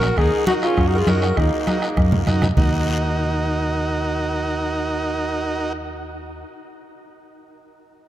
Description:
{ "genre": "latin, cumbia", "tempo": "200 BPM", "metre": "4/4", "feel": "straight", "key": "Eb minor", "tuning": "A4 = 441 Hz", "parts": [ { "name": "breathy alto saxophone", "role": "melody", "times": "0.0-2.3 s", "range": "Eb4 to Bb4", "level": "-23 LUFS", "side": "equal", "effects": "none" }, { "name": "growling trumpet", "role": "second line", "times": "0.0-2.3 s", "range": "Bb3 to Gb4", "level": "-30 LUFS", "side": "left 2 dB", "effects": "none" }, { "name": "combo organ", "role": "accompaniment", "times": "0.0-5.7 s", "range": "Eb4 to Db5", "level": "-25 LUFS", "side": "right 2 dB", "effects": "none" }, { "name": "fingered electric bass", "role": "bass", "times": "0.0-6.4 s", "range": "Bb1 to Gb2", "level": "-23 LUFS", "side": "equal", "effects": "none" }, { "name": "bombo", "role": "percussion", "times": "0.0-2.6 s", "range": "none", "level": "-23 LUFS", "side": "equal", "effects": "none" }, { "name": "guiro", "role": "percussion", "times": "0.0-2.6 s", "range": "none", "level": "-36 LUFS", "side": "left 5 dB", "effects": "none" }, { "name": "congas", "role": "percussion", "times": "0.2-2.6 s", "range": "none", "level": "-26 LUFS", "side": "right 1 dB", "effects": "none" } ], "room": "wet cathedral reverb, RT60 6.1 s", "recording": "in a vast, echoing space", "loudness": "-18 LUFS", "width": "side -12 dB against mid", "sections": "0.0-2.6 A section; 2.6-5.0 B section", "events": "drum fill 1.7-2.6", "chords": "0.2 Ebm" }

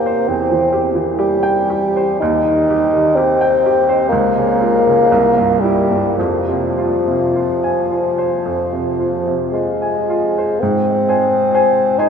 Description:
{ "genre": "classical, romantic duo for bassoon and grand piano", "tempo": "51-66 BPM", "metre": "4/4", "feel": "rubato", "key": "F minor", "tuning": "A4 = 442 Hz", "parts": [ { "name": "dark bassoon", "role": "melody", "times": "0.0-12.1 s", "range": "F3 to Eb4", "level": "-14 LUFS", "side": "left 1 dB", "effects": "none" }, { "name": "bright baby grand piano", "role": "accompaniment", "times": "0.0-12.1 s", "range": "C2 to Ab5", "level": "-18 LUFS", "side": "right 2 dB", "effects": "none" } ], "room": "wet huge ambient reverb, RT60 8.2 s", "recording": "in a vast, echoing space", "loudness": "-13 LUFS", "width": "side -6 dB against mid", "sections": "0.0-10.6 A section; 10.6-12.1 B section", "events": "none", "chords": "0.0 C/E; 2.2 Cm/Eb; 4.1 Bbm/Db; 5.1 C7; 6.2 Fm; 10.6 Ab" }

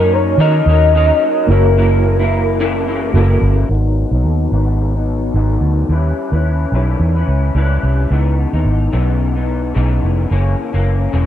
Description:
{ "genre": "indie pop", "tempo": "109 BPM", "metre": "4/4", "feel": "swing 55% on 16ths", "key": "G# minor", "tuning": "A4 = 440 Hz", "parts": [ { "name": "warm velvety synth lead", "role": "melody", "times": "0.0-3.1 s", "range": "A#4 to D#5", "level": "-16 LUFS", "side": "left 1 dB", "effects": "lush chorus, tape echo" }, { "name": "electric guitar through a small old amp", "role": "accompaniment", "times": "0.0-11.3 s", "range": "F#2 to B4", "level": "-19 LUFS", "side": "left 4 dB", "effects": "ensemble chorus, warbly pitch drift, low-pass filter" }, { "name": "reed electric piano", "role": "accompaniment", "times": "0.0-3.7 s", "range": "A#3 to C#5", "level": "-22 LUFS", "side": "right 6 dB", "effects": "fast tremolo, cassette tape" }, { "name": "vintage muted fingered electric bass", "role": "bass", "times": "0.0-11.3 s", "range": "E1 to D#3", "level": "-14 LUFS", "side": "equal", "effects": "none" } ], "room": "light reverb", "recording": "dark, warm production", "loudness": "-12 LUFS", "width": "side -11 dB against mid", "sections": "0.0-3.7 A section; 3.7-11.3 B section", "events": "filter sweep on clean electric guitar 3.7-11.3", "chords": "0.0 D#m7; 1.5 F#7; 3.7 G#m7; 5.9 D#7b9b13; 8.1 C#m9; 10.3 F#7" }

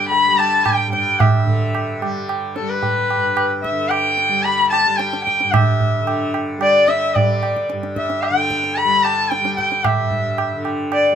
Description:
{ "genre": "indian classical, Hindustani", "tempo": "111 BPM", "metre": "4/4", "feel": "straight", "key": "G raga bhupali", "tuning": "A4 = 440 Hz", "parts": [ { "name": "clear sarangi", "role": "melody", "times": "0.0-11.2 s", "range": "A4 to B5", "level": "-17 LUFS", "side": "left 2 dB", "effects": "none" }, { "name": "tanpura", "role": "drone", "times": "0.0-11.2 s", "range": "G2 to G3", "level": "-26 LUFS", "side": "equal", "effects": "none" }, { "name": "tabla", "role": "percussion", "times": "0.1-11.1 s", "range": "none", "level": "-20 LUFS", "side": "right 3 dB", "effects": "none" } ], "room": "light reverb", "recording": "minimal, uncompressed stereo recording", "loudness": "-15 LUFS", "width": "side -8 dB against mid", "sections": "0.0-11.2 A section", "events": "none", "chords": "none" }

